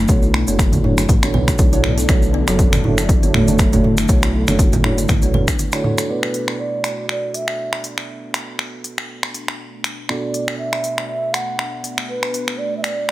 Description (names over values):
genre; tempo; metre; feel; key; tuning
afro house; 120 BPM; 4/4; swing 55% on 16ths; B minor; A4 = 440 Hz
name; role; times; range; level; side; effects
warm analog pad; sustained chords; 0.0-13.1 s; D3 to D4; -28 LUFS; right 1 dB; chorus, sidechain pumping
kalimba; arpeggios; 0.0-6.1 s; F#3 to B4; -23 LUFS; left 1 dB; sidechain pumping, dub echo
dark detuned saw bass; bass; 0.0-5.5 s; F#1 to B1; -20 LUFS; equal; sidechain pumping
felt-muted upright piano; stabs; 0.1-13.1 s; B2 to D5; -26 LUFS; right 3 dB; sidechain pumping, low-pass filter, dub echo
afro-pop drum kit; drums; 0.1-13.1 s; finger snaps, hi-hat, toms; -22 LUFS; equal; studio reverb
electronic kick drum; drums; 0.1-5.6 s; none; -16 LUFS; equal; overdrive, studio reverb
tube shaker; percussion; 0.1-6.1 s; none; -30 LUFS; right 2 dB; none
congas; percussion; 0.7-6.0 s; none; -23 LUFS; right 2 dB; none
mellow bass bansuri; melody; 6.1-13.1 s; B4 to F#5; -24 LUFS; right 1 dB; dub echo
room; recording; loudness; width
small room ambience; none; -16 LUFS; side -16 dB against mid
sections
0.0-6.1 A section; 6.1-13.1 B section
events
break 5.6-6.1; filter sweep on felt piano 6.1-13.1; filter sweep on analog synth pad 6.1-13.1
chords
0.0 Bm9; 6.1 Bm7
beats
| 0.09 0.59 1.09 1.59 | 2.09 2.59 3.09 3.59 | 4.09 4.59 5.09 5.59 | 6.09 6.59 7.09 7.59 | 8.09 8.59 9.09 9.59 | 10.09 10.59 11.09 11.59 | 12.09 12.59 13.09